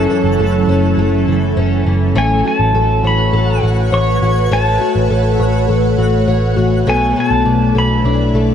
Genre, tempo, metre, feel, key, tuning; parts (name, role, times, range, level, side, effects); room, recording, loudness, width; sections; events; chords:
dream pop; 102 BPM; 4/4; straight; A major; A4 = 436 Hz
pedal steel guitar; melody; 0.0-8.3 s; A4 to C#6; -19 LUFS; equal; ping-pong delay
ethereal airy pad; sustained chords; 0.0-8.5 s; F#3 to D5; -18 LUFS; right 1 dB; ensemble chorus, built-in reverb, phaser
fingerpicked twelve-string acoustic guitar; arpeggios; 0.0-8.5 s; F#2 to C#5; -18 LUFS; left 3 dB; lush chorus, ping-pong delay
vintage muted picked electric bass; bass; 0.0-8.5 s; F#1 to B1; -15 LUFS; equal
twinkling granular texture; texture; 0.0-8.5 s; E5 to G#6; -30 LUFS; right 2 dB; built-in reverb, ping-pong delay
moderate huge ambient reverb, RT60 3.9 s; dark, warm production; -11 LUFS; side -8 dB against mid
0.0-2.2 A section; 2.2-8.5 A section
0.0 F#m7; 2.2 A69; 6.9 E7sus4/B